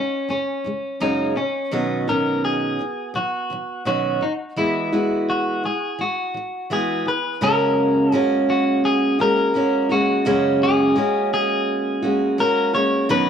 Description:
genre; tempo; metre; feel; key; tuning
pop; 84 BPM; 4/4; straight; unclear; A4 = 436 Hz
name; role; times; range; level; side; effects
clean electric guitar; melody; 0.0-13.3 s; C#4 to C#5; -22 LUFS; left 2 dB; spring reverb
picked steel-string acoustic guitar; accompaniment; 0.0-13.3 s; F#2 to F#4; -20 LUFS; right 2 dB; none
room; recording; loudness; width
little or no reverb; dry, close 1970s-style studio recording; -18 LUFS; side -8 dB against mid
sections
0.0-7.4 A section; 7.4-13.3 B section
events
none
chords
0.0 F#add9; 1.7 Badd9; 4.6 Eadd9; 7.4 F#add9

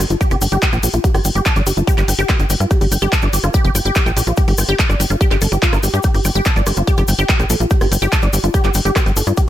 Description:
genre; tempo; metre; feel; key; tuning
psychedelic trance; 144 BPM; 4/4; straight; G minor; A4 = 439 Hz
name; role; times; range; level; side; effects
wide unison pluck; riff; 0.0-9.5 s; F4 to A5; -21 LUFS; equal; auto-pan, sidechain pumping, ping-pong delay
tight sequencer bass; bass; 0.0-9.3 s; F1 to G2; -17 LUFS; equal; none
big-room dance drum kit; drums; 0.0-9.5 s; handclaps, hi-hat, rim click; -22 LUFS; left 1 dB; studio reverb
cabasa; percussion; 0.0-9.5 s; none; -26 LUFS; left 4 dB; none
electronic kick drum; drums; 0.2-9.5 s; none; -16 LUFS; equal; studio reverb
room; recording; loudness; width
digital ambience; none; -13 LUFS; side -12 dB against mid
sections
0.0-9.5 A section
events
none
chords
0.0 G5

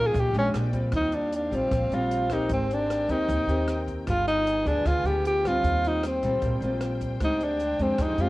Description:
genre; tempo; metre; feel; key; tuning
bossa nova; 153 BPM; 4/4; straight; Eb major; A4 = 444 Hz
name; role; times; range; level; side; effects
breathy tenor saxophone; melody; 0.0-8.3 s; C4 to Ab4; -25 LUFS; equal; cassette tape
nylon-string guitar; accompaniment; 0.0-8.3 s; Bb2 to Bb4; -30 LUFS; left 1 dB; cassette tape
warm studio string section; sustained chords; 0.0-8.3 s; Ab3 to Ab5; -39 LUFS; equal; cassette tape
upright bass; bass; 0.0-8.3 s; G1 to F2; -29 LUFS; equal; none
compact cocktail drum kit; drums; 0.1-8.3 s; hi-hat, kick drum, rim click; -34 LUFS; equal; none
room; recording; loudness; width
light reverb, small room ambience; home recording on cassette; -23 LUFS; side -18 dB against mid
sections
0.9-8.3 A section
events
none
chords
0.0 Eb9; 0.5 Bb13; 0.9 Eb69; 2.5 Abmaj9; 4.1 G7b9; 5.6 Eb69; 7.2 Bb13/D (rootless)

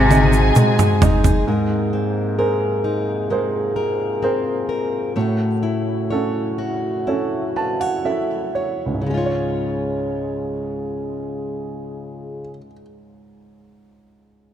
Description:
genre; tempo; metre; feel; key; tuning
pop ballad; 59-66 BPM; 4/4; straight; Db major; A4 = 441 Hz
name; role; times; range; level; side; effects
rich cello; melody; 0.0-1.0 s; C3; -20 LUFS; right 1 dB; tape echo
warm studio violin section; second line; 0.0-1.4 s; Ab4 to Ab5; -23 LUFS; equal; none
warm baby grand piano; accompaniment; 0.0-14.5 s; Db2 to A5; -22 LUFS; right 2 dB; none
warm French horn section; sustained chords; 0.0-12.6 s; C3 to Ab4; -27 LUFS; right 1 dB; none
fingerpicked plugged-in steel-string acoustic guitar; arpeggios; 0.0-12.8 s; Ab2 to C#5; -26 LUFS; left 5 dB; tape echo
warm sub bass; bass; 0.0-1.4 s; Gb1 to Ab1; -18 LUFS; equal; none
toms; drums; 0.1-1.5 s; none; -17 LUFS; equal; none
egg shaker; percussion; 0.1-1.5 s; none; -34 LUFS; right 9 dB; none
room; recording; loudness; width
light reverb, studio reverb; dark, warm production; -18 LUFS; side -10 dB against mid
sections
0.0-1.5 A section; 1.5-9.1 B section; 9.1-13.1 C section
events
drum fill 0.0-1.5; slowing down 1.5-9.1; grand piano fill 7.1-9.1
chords
0.0 Ab7; 1.5 Abadd9; 5.2 A6; 9.1 Db

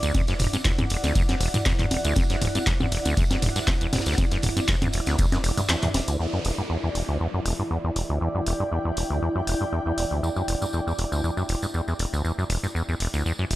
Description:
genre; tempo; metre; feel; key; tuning
acid house; 119 BPM; 4/4; swing 54% on 16ths; E minor; A4 = 440 Hz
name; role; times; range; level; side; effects
liquid acid bass; riff; 0.0-13.6 s; E1 to G2; -25 LUFS; equal; chorus, tube saturation, sidechain pumping, tape echo
punchy analog drum machine; drums; 0.0-13.6 s; congas, handclaps, hi-hat, ride cymbal, toms; -28 LUFS; equal; overdrive
tambourine; percussion; 0.0-6.2, 10.2-13.5 s; none; -39 LUFS; right 1 dB; none
granular cloud pad; texture; 0.0-13.6 s; E4 to G5; -31 LUFS; right 1 dB; built-in reverb, sidechain pumping
electronic kick drum; drums; 0.1-5.3 s; none; -25 LUFS; equal; none
oversized low-tuned drum kit; drums; 0.2-6.2 s; hi-hat, snare drum, tambourine; -36 LUFS; equal; high-pass filter on hats, high-pass filter on snare, high-pass filter on perc, high-pass filter on room
downlifter; sound effects; 6.2-10.2 s; none; -38 LUFS; equal; none
room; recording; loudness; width
light reverb, small room ambience; none; -22 LUFS; side -16 dB against mid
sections
0.0-6.2 A section; 6.2-13.6 B section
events
drop 0.0-6.2; kick drops out 5.7-6.2; band accent 5.7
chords
0.0 E7(no3); 6.2 Em7

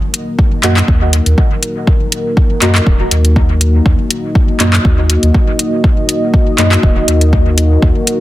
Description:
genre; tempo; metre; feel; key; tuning
dub techno; 121 BPM; 4/4; swing 53% on 16ths; Eb minor; A4 = 439 Hz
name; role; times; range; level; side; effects
dark analog pad; sustained chords; 0.0-8.2 s; Bb3 to Eb5; -17 LUFS; left 1 dB; chorus, sidechain pumping
deep house drum kit; drums; 0.1-8.2 s; handclaps, hi-hat; -16 LUFS; left 1 dB; overdrive, dub echo
electronic kick drum; drums; 0.4-7.9 s; none; -11 LUFS; equal; overdrive
deep mellow chord stab; stabs; 0.6-6.7 s; Bb3 to Eb5; -20 LUFS; equal; chorus, phaser, sidechain pumping, dub echo
warm sub bass; bass; 0.6-7.9 s; Eb1 to Gb2; -11 LUFS; equal; sidechain pumping
room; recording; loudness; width
little or no reverb; dense, heavily limited modern master; -9 LUFS; side -16 dB against mid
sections
0.0-8.2 A section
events
none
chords
0.0 Ebm

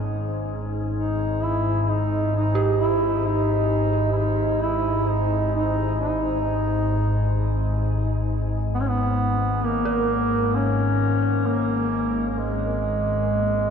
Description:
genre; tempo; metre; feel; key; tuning
dark ambient drone; 66 BPM; 4/4; straight; unclear; A4 = 442 Hz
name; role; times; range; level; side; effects
organ-like drone; drone; 0.0-13.7 s; G#1 to G#2; -24 LUFS; equal; ensemble chorus, built-in reverb
warm duduk; melody; 0.9-13.7 s; G#3 to E4; -24 LUFS; equal; shimmer reverb, ping-pong delay
dark detuned synth bell; arpeggios; 2.5-13.7 s; G4 to A#4; -30 LUFS; right 4 dB; chorus, shimmer reverb, ping-pong delay
room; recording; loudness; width
wet cathedral reverb, RT60 6.4 s; dark, warm production; -20 LUFS; side -7 dB against mid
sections
0.0-13.7 A section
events
none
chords
0.0 G#5

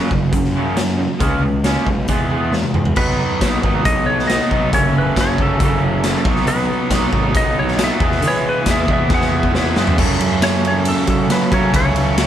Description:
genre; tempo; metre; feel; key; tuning
classic rock; 137 BPM; 4/4; straight; F# dorian; A4 = 442 Hz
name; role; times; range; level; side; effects
raw garage guitar; riff; 0.0-12.3 s; F#2 to E4; -19 LUFS; right 2 dB; overdrive
fuzz picked electric bass; bass; 0.1-12.3 s; F#1 to F#3; -21 LUFS; equal; overdrive
raw garage drum kit; drums; 0.1-12.3 s; crash cymbal, hi-hat, kick drum, ride cymbal, snare drum, toms; -18 LUFS; equal; none
clean lap steel guitar; melody; 3.0-12.3 s; A4 to F#5; -22 LUFS; left 1 dB; none
bright tonewheel organ; sustained chords; 6.5-12.3 s; B3 to E#5; -30 LUFS; equal; none
room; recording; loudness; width
light reverb; band playing live in one room; -14 LUFS; side -10 dB against mid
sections
0.0-3.0 A section; 3.0-10.0 B section; 10.0-12.3 C section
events
drum fill 2.5-3.0, 9.1-10.0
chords
0.0 F#5; 1.2 C#5; 2.1 E; 3.0 B; 4.7 F#m; 6.3 Badd9; 8.0 Eadd9; 10.0 F#m

